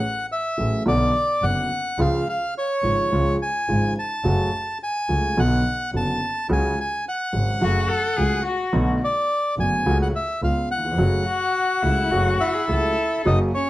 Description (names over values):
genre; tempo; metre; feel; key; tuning
tango; 107 BPM; 4/4; rubato; F# minor; A4 = 439 Hz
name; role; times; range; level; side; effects
bandoneon; melody; 0.0-13.7 s; C#4 to A5; -23 LUFS; equal; none
warm grand piano; accompaniment; 0.6-13.5 s; F#1 to G#4; -24 LUFS; equal; none
clear double bass; bass; 0.6-13.5 s; F#1 to C#2; -24 LUFS; equal; none
warm cello; second line; 7.6-13.2 s; E4 to A4; -25 LUFS; left 4 dB; none
room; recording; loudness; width
light reverb; vinyl crackle; -19 LUFS; side -16 dB against mid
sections
0.0-13.3 A section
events
none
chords
0.0 F#madd9; 0.9 Bm; 2.0 C#; 4.2 F#m; 5.4 Bm; 6.5 C#sus4; 7.6 F#m; 8.7 Bm7; 9.9 F#m/C#; 10.4 C#7; 11.0 F#m